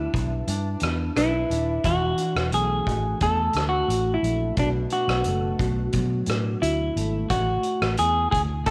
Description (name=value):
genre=indie pop, bedroom pop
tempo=88 BPM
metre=4/4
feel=straight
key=unclear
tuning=A4 = 440 Hz
part: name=semi-hollow electric guitar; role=melody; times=0.0-8.7 s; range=D4 to A4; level=-27 LUFS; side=equal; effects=subtle chorus, slapback echo
part: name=nylon-string guitar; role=accompaniment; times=0.0-8.7 s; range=B2 to C#5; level=-33 LUFS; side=equal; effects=lush chorus, vibrato effect
part: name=vintage muted fingered electric bass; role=bass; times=0.0-8.7 s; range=D#1 to B2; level=-29 LUFS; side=equal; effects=none
part: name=loose indie drum kit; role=drums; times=0.1-8.7 s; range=hi-hat, kick drum, rim click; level=-32 LUFS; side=equal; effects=none
room=light reverb, studio reverb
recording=none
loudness=-24 LUFS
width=mono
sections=0.0-8.7 A section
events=none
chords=0.0 G6; 1.8 E9sus4; 4.6 Bm7; 7.3 Amaj7